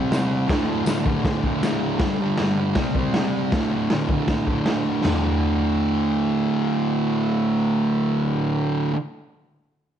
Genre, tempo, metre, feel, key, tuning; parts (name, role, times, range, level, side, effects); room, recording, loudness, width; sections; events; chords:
garage rock duo or trio; 157 BPM; 4/4; straight; A4 = 441 Hz
fuzz guitar; riff; 0.0-9.0 s; D2 to C4; -21 LUFS; right 1 dB; distortion
raw garage drum kit; drums; 0.1-5.1 s; hi-hat, kick drum, snare drum, splash cymbal, toms; -24 LUFS; equal
tambourine; percussion; 0.1-1.7 s; -41 LUFS; left 6 dB
light reverb, small room ambience; nothing above 10.7 kHz; -20 LUFS; side -9 dB against mid
0.0-5.1 A section; 5.1-8.1 B section
0.5 D5; 2.0 G5; 2.8 C5; 3.5 D5